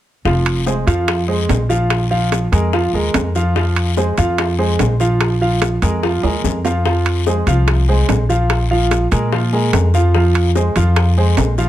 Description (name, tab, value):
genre	Afro-Cuban jazz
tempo	146 BPM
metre	4/4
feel	straight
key	F minor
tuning	A4 = 440 Hz
part	upright bass	bass	0.2-11.7 s	F1 to Bb2	-16 LUFS	equal	none
part	clear baby grand piano	accompaniment	0.3-11.7 s	F3 to F5	-18 LUFS	right 2 dB	none
part	bongos	percussion	0.3-11.7 s	none	-25 LUFS	left 9 dB	none
part	guiro	percussion	0.3-11.7 s	none	-30 LUFS	left 10 dB	none
part	timbales	percussion	0.5-11.6 s	none	-22 LUFS	right 6 dB	none
room	light reverb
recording	close, detailed microphones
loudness	-13 LUFS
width	side -13 dB against mid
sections	0.3-11.7 A section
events	drum fill 6.2-6.9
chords	0.3 Fm; 1.9 Bb5; 3.6 Fm; 5.2 Bb5; 6.9 Fm; 8.5 Bb5; 10.1 Fm